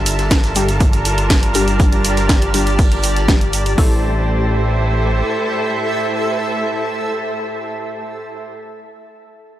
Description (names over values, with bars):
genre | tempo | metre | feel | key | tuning
melodic techno | 121 BPM | 4/4 | straight | A phrygian | A4 = 438 Hz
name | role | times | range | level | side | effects
rich studio string section | sustained chords | 0.0-8.5 s | A2 to C5 | -23 LUFS | right 2 dB | vintage 12-bit sampler grit, sidechain pumping, low-pass filter
synth brass stab | stabs | 0.0-8.5 s | G3 to A4 | -26 LUFS | left 3 dB | chorus, sidechain pumping, analog delay
fat analog bass | bass | 0.0-5.2 s | G1 to A1 | -19 LUFS | equal | sidechain pumping
granular cloud pad | texture | 0.0-8.5 s | G4 to A5 | -22 LUFS | equal | built-in reverb, sidechain pumping
techno drum kit | drums | 0.1-3.8 s | hi-hat, snare drum | -20 LUFS | equal | overdrive, studio reverb
vintage brush drum kit | drums | 0.1-3.7 s | hi-hat, snare drum | -30 LUFS | right 2 dB | none
egg shaker | percussion | 0.1-3.8 s | none | -28 LUFS | right 4 dB | none
techno drum kit | drums | 0.3-3.9 s | hi-hat, kick drum | -14 LUFS | equal | studio reverb
room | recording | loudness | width
light reverb, digital ambience | dry, gritty hardware recording | -14 LUFS | side -13 dB against mid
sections
0.0-3.8 A section; 3.8-7.7 B section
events
filter sweep on string section 0.0-3.8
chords
0.0 Gm7; 3.8 Am7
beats
0.31 0.81 1.30 | 1.80 2.29 2.79 3.29 | 3.78 4.28 4.77 5.27 | 5.76 6.26 6.76 7.25